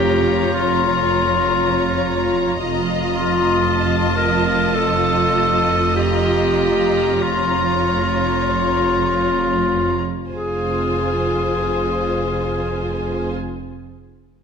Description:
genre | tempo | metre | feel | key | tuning
classical, slow romantic movement for symphony orchestra | 35-61 BPM | 3/4 | rubato | F minor | A4 = 442 Hz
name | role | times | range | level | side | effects
rich studio violin section | melody | 0.0-13.3 s | Ab5 to Bb5 | -28 LUFS | left 2 dB | none
bright clarinet | second line | 0.0-13.3 s | F4 to Bb4 | -20 LUFS | left 3 dB | none
rich studio violin section | second line | 0.0-13.3 s | C5 to Eb5 | -26 LUFS | left 3 dB | none
rich studio viola section | accompaniment | 0.0-13.3 s | F4 | -25 LUFS | right 2 dB | none
rich studio cello section | bass | 0.0-13.3 s | F2 | -25 LUFS | right 4 dB | none
rich studio double bass section | bass | 0.0-13.3 s | F1 | -24 LUFS | right 3 dB | none
room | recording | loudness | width
wet scoring stage reverb, RT60 1.5 s | none | -16 LUFS | side -6 dB against mid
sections
0.0-10.3 A section; 10.3-14.4 B section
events
slowing down 1.1-10.3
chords
0.0 Bbm/F

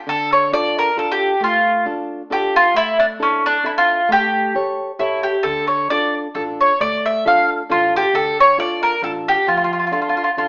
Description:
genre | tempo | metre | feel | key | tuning
italian folk, Italian serenade | 134 BPM | 3/4 | swing 55% on 8ths | D harmonic minor | A4 = 440 Hz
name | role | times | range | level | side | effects
mandolin | melody | 0.1-10.4 s | C#4 to F5 | -15 LUFS | equal | none
nylon-string guitar | accompaniment | 0.1-10.5 s | D3 to E5 | -24 LUFS | equal | none
upright bass | bass | 5.4-10.5 s | A1 to D2 | -40 LUFS | equal | none
room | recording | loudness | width
wet studio reverb, RT60 0.8 s | band playing live in one room, AM radio sound | -14 LUFS | side -37 dB against mid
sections
0.1-10.5 A section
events
none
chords
0.1 Dm; 2.7 Asus4; 4.1 A7; 5.4 Dm

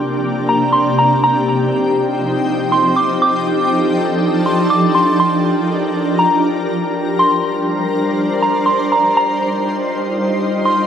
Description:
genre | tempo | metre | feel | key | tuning
hip hop | 121 BPM | 4/4 | half-time | Bb major | A4 = 440 Hz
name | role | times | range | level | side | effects
shimmering ambient pad | sustained chords | 0.0-10.9 s | C3 to C5 | -16 LUFS | equal | chorus, built-in reverb
soft synth bell | melody | 0.5-10.9 s | Bb5 to D6 | -17 LUFS | right 1 dB | chorus, phaser, low-pass filter, tape echo
room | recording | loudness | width
moderate huge ambient reverb, RT60 6.5 s | dark, warm production | -13 LUFS | side -8 dB against mid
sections
0.0-10.9 A section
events
none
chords
0.0 Bb69; 1.2 Eb69; 3.2 F13; 5.2 Gm7; 7.2 Bb69; 9.2 Eb69

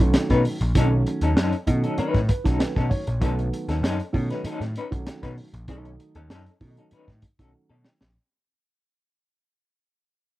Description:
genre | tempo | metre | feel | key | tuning
funk | 97 BPM | 4/4 | straight | B mixolydian | A4 = 439 Hz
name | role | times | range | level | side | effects
semi-hollow electric guitar | accompaniment | 0.0-8.0 s | C#4 to B4 | -28 LUFS | left 4 dB | tremolo
dark upright piano | stabs | 0.0-7.9 s | D#3 to D#5 | -28 LUFS | right 3 dB | none
overdriven picked electric bass | bass | 0.0-8.1 s | A#1 to B2 | -24 LUFS | equal | none
crunchy breakbeat drum kit | drums | 0.0-8.1 s | hi-hat, kick drum, snare drum | -24 LUFS | equal | none
room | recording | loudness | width
little or no reverb | dry, close 1970s-style studio recording | -21 LUFS | side -17 dB against mid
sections
0.0-8.2 A section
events
fade-out 0.0-8.2; upright piano fill 1.4-3.2; drum fill 7.5-8.2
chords
0.0 B9

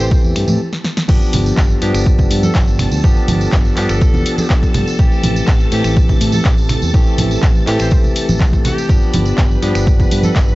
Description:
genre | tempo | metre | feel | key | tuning
filtered disco house | 123 BPM | 4/4 | straight | unclear | A4 = 439 Hz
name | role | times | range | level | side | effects
bright horn section | melody | 0.0-10.4 s | G4 to C5 | -29 LUFS | equal | sidechain pumping, low-pass filter, tape echo
barky tine electric piano | accompaniment | 0.0-10.6 s | E3 to G4 | -20 LUFS | equal | phaser, sidechain pumping, low-pass filter
string machine, full ensemble | sustained chords | 0.0-10.6 s | A4 to B5 | -27 LUFS | equal | ensemble chorus, vintage 12-bit sampler grit, sidechain pumping, low-pass filter
fingered electric bass | bass | 0.0-10.6 s | G1 to A2 | -18 LUFS | equal | tube saturation, sidechain pumping, low-pass filter
tambourine and congas | percussion | 0.0-10.6 s | none | -22 LUFS | right 2 dB | sidechain pumping on perc, low-pass filter on perc
electronic kick drum | drums | 0.1-10.5 s | none | -13 LUFS | equal | small room reverb
house drum kit | drums | 0.4-10.5 s | crash cymbal, finger snaps, handclaps, hi-hat, snare drum | -23 LUFS | left 1 dB | sidechain pumping on hats, small room reverb, sidechain pumping on cymbals
room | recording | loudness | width
little or no reverb | dry, gritty hardware recording, nothing above 7.8 kHz | -11 LUFS | side -19 dB against mid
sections
0.0-1.1 A section; 1.1-10.6 B section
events
stop 0.6-1.1; drum fill 0.7-1.1; drop 1.1-10.6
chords
0.0 Am7; 1.1 G7; 5.0 Am7; 8.9 G7

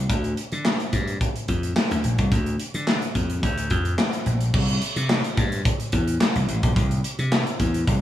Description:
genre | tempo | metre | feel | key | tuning
early-eighties boogie funk | 108 BPM | 4/4 | straight | unclear | A4 = 440 Hz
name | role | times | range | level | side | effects
slap bass | bass | 0.0-8.0 s | A1 to D3 | -23 LUFS | equal | none
modern studio drum kit | drums | 0.1-8.0 s | crash cymbal, handclaps, hi-hat, kick drum, snare drum | -23 LUFS | equal | none
room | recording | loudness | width
moderate lush hall reverb, RT60 2.2 s | big arena sound | -20 LUFS | side -12 dB against mid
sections
0.0-4.5 A section; 4.5-8.0 B section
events
none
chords
none

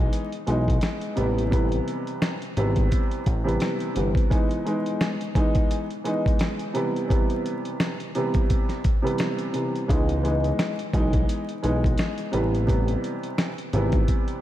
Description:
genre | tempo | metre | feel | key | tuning
hip hop, boom-bap hip-hop | 86 BPM | 4/4 | swing 56% on 16ths | unclear | A4 = 441 Hz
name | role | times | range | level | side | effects
warm upright piano | accompaniment | 0.0-14.4 s | C3 to D#4 | -26 LUFS | equal | cassette tape, high-pass filter, low-pass filter
fat analog bass | bass | 0.0-4.1, 9.9-14.0 s | G1 to C#2 | -25 LUFS | equal | none
dusty soul sampler-style drum kit | drums | 0.1-14.4 s | hi-hat, kick drum, snare drum | -25 LUFS | equal | vintage 12-bit sampler grit
room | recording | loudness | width
light reverb | vinyl crackle | -22 LUFS | side -13 dB against mid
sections
0.0-14.4 A section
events
none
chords
0.0 C#m7 (rootless); 1.2 Am7; 4.3 Emaj7; 6.8 Cmaj7; 9.9 C#m7; 12.3 Am7

